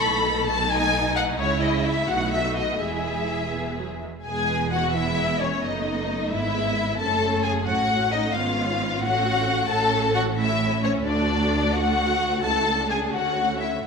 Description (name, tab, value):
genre	quick classical-period movement for string orchestra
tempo	88 BPM (dotted quarters)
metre	6/8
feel	rubato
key	E major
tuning	A4 = 440 Hz
part	warm studio violin section	melody	0.0-13.9 s	C#5 to B5	-24 LUFS	left 4 dB	none
part	warm studio violin section	second line	0.0-13.7 s	C#4 to A4	-28 LUFS	left 1 dB	none
part	warm symphonic viola section	accompaniment	0.0-13.8 s	F#3 to F#4	-29 LUFS	right 2 dB	none
part	dark studio double bass section	bass	0.0-13.9 s	E1 to D2	-31 LUFS	right 5 dB	none
part	warm studio cello section	bass	0.0-13.9 s	C#2 to C#3	-30 LUFS	right 4 dB	none
room	wet concert hall reverb, RT60 2.0 s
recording	minimal, uncompressed stereo recording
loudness	-21 LUFS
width	side -5 dB against mid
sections	0.0-4.3 A section; 4.3-13.9 B section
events	none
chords	0.0 B7; 1.4 C#m; 2.1 B7; 2.8 E; 5.6 B7/F#; 6.3 E/G#; 7.0 F#m; 8.3 C#7/G#; 9.0 F#m/A; 11.1 D; 12.4 A/C#; 13.1 Dmaj7